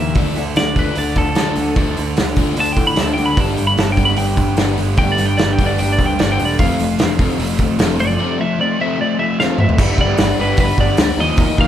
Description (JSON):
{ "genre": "indie rock", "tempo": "150 BPM", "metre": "4/4", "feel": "straight", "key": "G mixolydian", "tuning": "A4 = 440 Hz", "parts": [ { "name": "twelve-string electric guitar", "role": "melody", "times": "0.0-11.7 s", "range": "A4 to B5", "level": "-21 LUFS", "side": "equal", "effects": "spring reverb" }, { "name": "overdriven semi-hollow guitar", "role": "riff", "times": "0.0-11.7 s", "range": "D3 to B4", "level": "-20 LUFS", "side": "left 3 dB", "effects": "none" }, { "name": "sludgy distorted guitar", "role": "riff", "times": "0.0-11.7 s", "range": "D3 to Bb4", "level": "-26 LUFS", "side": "right 6 dB", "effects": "overdrive" }, { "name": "modern bright picked electric bass", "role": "bass", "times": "0.0-11.7 s", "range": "E1 to A2", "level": "-21 LUFS", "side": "right 1 dB", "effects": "none" }, { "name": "loose indie drum kit", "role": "drums", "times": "0.1-11.7 s", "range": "crash cymbal, hi-hat, kick drum, snare drum, toms", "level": "-18 LUFS", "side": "equal", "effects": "none" }, { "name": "string machine, violas", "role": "sustained chords", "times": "3.4-11.7 s", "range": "A3 to Eb6", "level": "-30 LUFS", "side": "right 1 dB", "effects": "none" } ], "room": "moderate large studio reverb, RT60 1.4 s", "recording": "band playing live in one room", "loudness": "-14 LUFS", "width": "side -10 dB against mid", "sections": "0.0-9.8 A section; 9.8-11.7 B section", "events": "clean electric guitar solo 0.0-9.8; drum fill 9.4-9.8", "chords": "0.2 Dm; 3.4 Gadd9; 6.6 F; 9.8 Gadd9" }